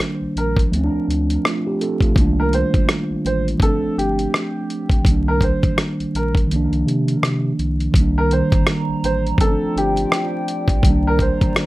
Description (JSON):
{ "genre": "lo-fi hip hop", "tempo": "83 BPM", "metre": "4/4", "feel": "swing 59% on 16ths", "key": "C dorian", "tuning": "A4 = 438 Hz", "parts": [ { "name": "mellow tine electric piano", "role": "accompaniment", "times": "0.0-11.7 s", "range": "D3 to A4", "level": "-21 LUFS", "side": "right 1 dB", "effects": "slow stereo tremolo, cassette tape, low-pass filter" }, { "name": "dusty soul sampler-style drum kit", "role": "drums", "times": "0.0-11.7 s", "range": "hi-hat, kick drum, rim click", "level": "-18 LUFS", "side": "equal", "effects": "none" }, { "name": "warm sub bass", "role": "bass", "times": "0.2-11.5 s", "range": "G1 to C3", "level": "-22 LUFS", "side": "equal", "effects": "none" }, { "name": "clear upright piano", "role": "melody", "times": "0.4-11.5 s", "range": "G4 to C5", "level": "-24 LUFS", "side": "right 1 dB", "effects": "low-pass filter" }, { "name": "warbly tape-like pad", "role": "sustained chords", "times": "8.4-11.7 s", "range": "Eb3 to Bb5", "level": "-27 LUFS", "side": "equal", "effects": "chorus, built-in reverb, low-pass filter" } ], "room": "light reverb", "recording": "vinyl crackle", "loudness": "-16 LUFS", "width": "side -18 dB against mid", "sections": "0.0-7.9 A section; 7.9-11.7 A section", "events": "none", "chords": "0.0 Cm9 (rootless); 0.7 Dm7; 2.2 Cm9; 3.6 G7sus4; 5.0 Cm9; 6.5 Cm11; 7.9 Cm9; 9.4 G7sus4; 10.8 Cm9" }